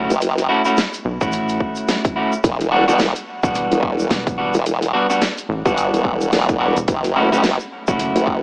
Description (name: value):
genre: glitch hop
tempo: 108 BPM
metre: 4/4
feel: swing 59% on 16ths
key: E dorian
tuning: A4 = 438 Hz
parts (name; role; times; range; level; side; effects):
- clean electric guitar; stabs; 0.0-8.4 s; G3 to F#4; -19 LUFS; equal; vintage 12-bit sampler grit, sidechain pumping, dub echo
- rubbery square bass; bass; 0.0-8.1 s; E1 to B1; -24 LUFS; equal; none
- formant-sweep wobble bass; bass; 0.1-8.4 s; E1 to G1; -17 LUFS; equal; chorus, tube saturation
- dubstep drum kit; drums; 0.1-8.2 s; hi-hat, snare drum; -22 LUFS; equal; small room ambience
- egg shaker; percussion; 0.1-8.3 s; none; -34 LUFS; equal; none
- electronic kick drum; drums; 1.2-8.4 s; none; -22 LUFS; equal; small room ambience
room: light reverb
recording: vinyl crackle, small speaker sound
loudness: -16 LUFS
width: side -29 dB against mid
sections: 0.0-8.4 A section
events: none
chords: 0.0 F#m7; 2.4 Em7; 6.9 F#m7